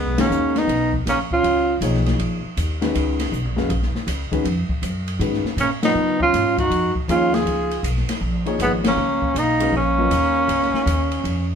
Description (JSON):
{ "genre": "modal jazz", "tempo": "159 BPM", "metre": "4/4", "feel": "swing 65% on 8ths", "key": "Db mixolydian", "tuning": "A4 = 440 Hz", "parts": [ { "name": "breathy tenor saxophone", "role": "melody", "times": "0.0-1.8, 5.6-11.6 s", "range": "Cb4 to Ab4", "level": "-19 LUFS", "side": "right 1 dB", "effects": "none" }, { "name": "warm trombone", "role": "second line", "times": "0.0-1.8, 5.6-11.6 s", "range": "Ab3 to F4", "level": "-27 LUFS", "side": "right 2 dB", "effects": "none" }, { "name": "upright bass", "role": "bass", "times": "0.0-11.6 s", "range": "F1 to Db3", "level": "-24 LUFS", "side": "equal", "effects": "none" }, { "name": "warm baby grand piano", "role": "accompaniment", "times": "0.2-10.1 s", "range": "Eb3 to F5", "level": "-24 LUFS", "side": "left 3 dB", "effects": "none" }, { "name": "open jazz drum kit", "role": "drums", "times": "0.2-11.4 s", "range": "hi-hat, kick drum, ride cymbal, snare drum", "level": "-27 LUFS", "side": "left 1 dB", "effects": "none" } ], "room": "moderate studio reverb, RT60 0.5 s", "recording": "band playing live in one room", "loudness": "-18 LUFS", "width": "side -7 dB against mid", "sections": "0.0-11.6 A section", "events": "band accent 0.1, 5.8, 8.8", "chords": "0.0 Db13; 2.9 Bbm; 6.0 Db13; 9.0 Bbm" }